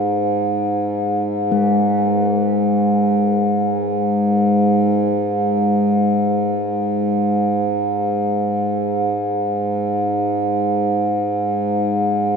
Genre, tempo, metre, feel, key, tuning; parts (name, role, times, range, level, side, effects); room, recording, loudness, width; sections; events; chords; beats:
world meditative, free-time meditation music; free time; A4 = 436 Hz
pedal harmonium; drone; 0.0-12.4 s; G#2; -18 LUFS; right 1 dB
quartz singing bowl; texture; 1.5-10.7 s; G#3; -20 LUFS; left 2 dB
wet huge ambient reverb, RT60 4.8 s; -16 LUFS; side -5 dB against mid
0.0-12.4 A section
free time